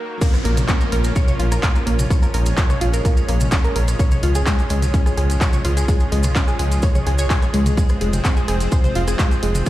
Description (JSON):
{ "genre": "melodic techno", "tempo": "127 BPM", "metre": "4/4", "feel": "straight", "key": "Bb minor", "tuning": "A4 = 440 Hz", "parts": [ { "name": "lush unison pad", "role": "sustained chords", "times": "0.0-9.7 s", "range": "Eb3 to Db4", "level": "-26 LUFS", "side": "equal", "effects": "chorus, sidechain pumping" }, { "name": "swell and downlifter", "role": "sound effects", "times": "0.0-4.0 s", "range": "none", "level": "-32 LUFS", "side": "right 1 dB", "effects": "none" }, { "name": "analog pluck", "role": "arpeggios", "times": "0.2-9.7 s", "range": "Ab3 to Ab6", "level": "-25 LUFS", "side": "equal", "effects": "chorus, sidechain pumping, digital delay" }, { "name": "electronic kick drum", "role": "drums", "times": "0.2-9.7 s", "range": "none", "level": "-17 LUFS", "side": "equal", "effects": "overdrive" }, { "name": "house drum kit", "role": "drums", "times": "0.2-9.7 s", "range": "crash cymbal, handclaps, hi-hat, rim click, toms", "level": "-26 LUFS", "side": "equal", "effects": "overdrive, sidechain pumping on hats, sidechain pumping on toms, sidechain pumping on cymbals" }, { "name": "vintage brush drum kit", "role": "drums", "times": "0.2-9.7 s", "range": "hi-hat, snare drum", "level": "-37 LUFS", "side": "left 2 dB", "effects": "none" }, { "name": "maracas", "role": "percussion", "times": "0.2-9.7 s", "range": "none", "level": "-34 LUFS", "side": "right 2 dB", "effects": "none" }, { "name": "round analog bass", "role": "bass", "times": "0.5-9.6 s", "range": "F1 to Db2", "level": "-18 LUFS", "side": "equal", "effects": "sidechain pumping" } ], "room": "light reverb", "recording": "played on a big sound system in a bare room, large studio reverb, high-pass filter", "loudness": "-16 LUFS", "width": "side -15 dB against mid", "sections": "0.2-9.7 A section", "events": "break 0.0; swell 0.0; drop 0.2-9.7", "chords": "0.2 Bbm; 4.0 Db; 7.8 Fm" }